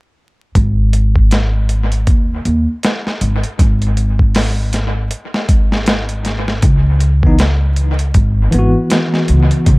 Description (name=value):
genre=trip hop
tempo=79 BPM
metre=4/4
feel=swing 59% on 16ths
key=G# minor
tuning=A4 = 438 Hz
part: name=upright bass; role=bass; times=0.6-9.8 s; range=G#1 to D#2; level=-14 LUFS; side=equal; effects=none
part: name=dusty soul sampler-style drum kit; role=drums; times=0.6-9.8 s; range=hi-hat, kick drum, snare drum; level=-15 LUFS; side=equal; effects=overdrive, dub echo
part: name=bell-like tine electric piano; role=accompaniment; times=7.2-9.8 s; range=E3 to F#4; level=-16 LUFS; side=equal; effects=tremolo, vintage 12-bit sampler grit, tape echo
room=little or no reverb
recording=echo-heavy mix, vinyl crackle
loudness=-12 LUFS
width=side -24 dB against mid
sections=0.6-9.8 A section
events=none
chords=0.6 G#5; 6.6 C#m7